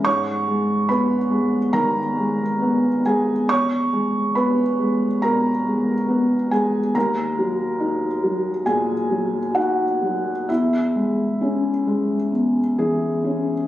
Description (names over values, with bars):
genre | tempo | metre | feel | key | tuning
neoclassical minimalist piano | 69 BPM | 4/4 | uneven beats, rubato | G# minor | A4 = 441 Hz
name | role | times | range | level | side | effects
felt-muted upright piano | solo | 0.0-13.7 s | D#2 to C#6 | -18 LUFS | equal | none
room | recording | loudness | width
moderate recital hall reverb, RT60 1.3 s | recorded on a phone in the room, club reverb | -18 LUFS | side -14 dB against mid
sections
0.0-13.7 A section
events
none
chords
0.1 G#m; 3.5 E; 6.9 D#m; 10.5 C#m/E